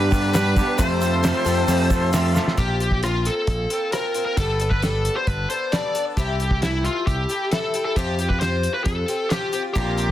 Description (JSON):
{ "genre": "folk rock and heartland rock", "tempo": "134 BPM", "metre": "4/4", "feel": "straight", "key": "unclear", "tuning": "A4 = 440 Hz", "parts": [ { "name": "smooth overdriven lead guitar", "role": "melody", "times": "0.0-10.1 s", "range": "E4 to D5", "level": "-24 LUFS", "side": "left 1 dB", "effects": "none" }, { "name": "dark concert grand piano", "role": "accompaniment", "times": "0.0-2.6 s", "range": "none", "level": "barely audible", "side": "none", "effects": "none" }, { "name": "picked twelve-string acoustic guitar", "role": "accompaniment", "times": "0.0-10.1 s", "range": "F2 to Bb4", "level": "-29 LUFS", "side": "left 5 dB", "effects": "none" }, { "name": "tonewheel organ", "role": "sustained chords", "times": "0.0-2.6 s", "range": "G4 to C6", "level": "-33 LUFS", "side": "equal", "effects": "none" }, { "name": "electric guitar through a small old amp", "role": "riff", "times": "0.0-2.6, 9.8-10.1 s", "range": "F2 to G4", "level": "-24 LUFS", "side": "right 3 dB", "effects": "none" }, { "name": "picked electric bass", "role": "bass", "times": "0.0-10.1 s", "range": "G1 to G2", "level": "-23 LUFS", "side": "equal", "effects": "none" }, { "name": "cloth-damped thuddy drum kit", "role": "drums", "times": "0.1-10.1 s", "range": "hi-hat, kick drum, rim click, snare drum", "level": "-24 LUFS", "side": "equal", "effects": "none" }, { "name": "tube shaker", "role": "percussion", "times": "0.1-2.5 s", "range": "none", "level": "-36 LUFS", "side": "right 6 dB", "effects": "none" } ], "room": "light reverb", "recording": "dense, heavily limited modern master", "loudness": "-19 LUFS", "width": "side -12 dB against mid", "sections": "0.0-2.6 A section; 2.6-10.1 B section", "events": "drum fill 2.4", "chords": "0.0 G; 0.8 F; 2.6 Bbsus2; 4.4 Gadd9; 6.2 C6; 8.0 Fsus2", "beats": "0.35 | 0.80 1.24 1.69 2.14 | 2.58 3.03 3.48 3.93 | 4.38 4.83 5.28 5.73 | 6.18 6.63 7.08 7.52 | 7.97 8.42 8.87 9.32 | 9.76" }